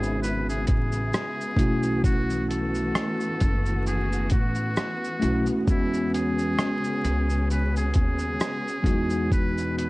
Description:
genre	lo-fi hip hop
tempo	66 BPM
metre	4/4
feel	swing 58% on 16ths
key	E major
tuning	A4 = 440 Hz
part	trumpet with metal mute	melody	0.0-9.9 s	E4 to B4	-31 LUFS	equal	low-pass filter
part	mellow tine electric piano	accompaniment	0.0-9.9 s	F#3 to F#4	-28 LUFS	equal	medium stereo tremolo, low-pass filter
part	warm studio string section	sustained chords	0.0-9.9 s	B2 to F#4	-34 LUFS	equal	low-pass filter
part	upright bass	bass	0.0-9.9 s	F#1 to E2	-28 LUFS	equal	none
part	lo-fi sampler-style drum kit	drums	0.0-9.9 s	hi-hat, kick drum, rim click, shaker	-26 LUFS	equal	none
room	studio ambience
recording	vinyl crackle, nothing above 10.8 kHz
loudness	-22 LUFS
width	side -21 dB against mid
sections	0.0-9.9 A section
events	none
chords	0.0 E6; 1.6 B7sus4; 5.7 E6; 8.9 Emaj7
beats	0.22 1.13 | 2.04 2.95 3.86 4.76 | 5.67 6.58 7.49 8.40 | 9.31

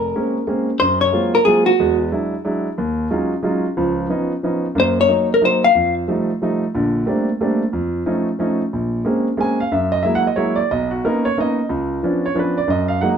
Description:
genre	jazz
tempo	182 BPM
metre	3/4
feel	swing 62% on 8ths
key	Bb minor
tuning	A4 = 440 Hz
part	vintage hollow-body jazz guitar	melody	0.0-2.0, 4.8-5.9 s	Gb4 to F5	-15 LUFS	left 2 dB	plate reverb
part	warm grand piano	accompaniment	0.0-13.2 s	F1 to Ab5	-18 LUFS	right 1 dB	none
room	moderate club reverb, RT60 0.7 s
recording	dark, warm production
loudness	-16 LUFS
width	side -7 dB against mid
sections	0.8-8.7 A section; 8.7-13.2 B section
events	none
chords	0.0 Bbm9; 0.8 Gbmaj9#11; 1.8 E9; 2.8 Ebm11; 3.8 Db9; 4.8 Gb6; 5.7 F9; 6.7 Bbmaj13; 7.7 F7b13; 8.7 Bbm9; 9.7 Gb9; 10.7 Bmaj9; 11.7 Db7b9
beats	0.14 0.47 | 0.80 1.13 1.46 | 1.79 2.12 2.45 | 2.78 3.11 3.44 | 3.77 4.10 4.43 | 4.76 5.09 5.42 | 5.75 6.08 6.41 | 6.74 7.07 7.39 | 7.72 8.05 8.38 | 8.71 9.05 9.38 | 9.71 10.04 10.37 | 10.70 11.03 11.36 | 11.69 12.02 12.35 | 12.68 13.01

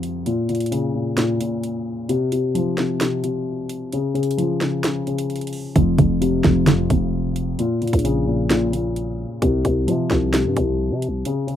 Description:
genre	hip hop, trap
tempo	131 BPM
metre	4/4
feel	half-time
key	unclear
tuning	A4 = 435 Hz
part	dark concert grand piano	accompaniment	0.0-11.6 s	F2 to F3	-20 LUFS	left 2 dB	low-pass filter
part	trap drum kit	drums	0.0-11.6 s	hi-hat, kick drum, snare drum	-23 LUFS	right 1 dB	none
part	growling 808-style bass	bass	5.8-11.2 s	F1 to C3	-24 LUFS	right 1 dB	none
room	light reverb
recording	rough home demo mix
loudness	-18 LUFS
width	side -10 dB against mid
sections	0.0-11.6 A section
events	break 0.0-5.8; filter sweep on grand piano 0.0-11.6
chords	0.3 Bbm; 2.1 Csus4; 3.9 Db; 5.8 F5; 7.6 Bbm; 9.4 Csus4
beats	| 0.26 0.72 1.18 1.63 | 2.09 2.55 3.01 3.47 | 3.92 4.38 4.84 5.30 | 5.76 6.21 6.67 7.13 | 7.59 8.05 8.51 8.96 | 9.42 9.88 10.34 10.79 | 11.25

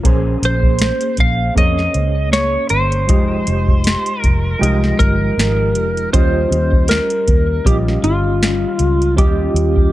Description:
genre	indie pop, bedroom pop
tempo	79 BPM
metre	4/4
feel	swing 55% on 16ths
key	unclear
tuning	A4 = 440 Hz
part	bright reed electric piano	accompaniment	0.0-9.9 s	Ab3 to Eb5	-25 LUFS	right 5 dB	overdrive, fast tremolo
part	mellow electric guitar	accompaniment	0.0-9.9 s	Eb3 to C5	-23 LUFS	left 5 dB	ensemble chorus, vibrato effect
part	vintage muted fingered electric bass	bass	0.0-9.9 s	F1 to F2	-18 LUFS	equal	none
part	soft vintage rhythm box	drums	0.0-9.9 s	hi-hat, kick drum, snare drum	-16 LUFS	equal	none
part	clean lap steel guitar	melody	0.5-9.9 s	F4 to F5	-19 LUFS	right 1 dB	analog chorus
room	digital ambience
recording	dark, warm production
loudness	-13 LUFS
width	side -15 dB against mid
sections	0.0-9.9 A section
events	none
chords	0.0 Bbm9; 3.1 Fm9; 6.1 Eb9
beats	| 0.05 0.81 1.57 2.33 | 3.09 3.85 4.62 5.38 | 6.14 6.90 7.66 8.42 | 9.18

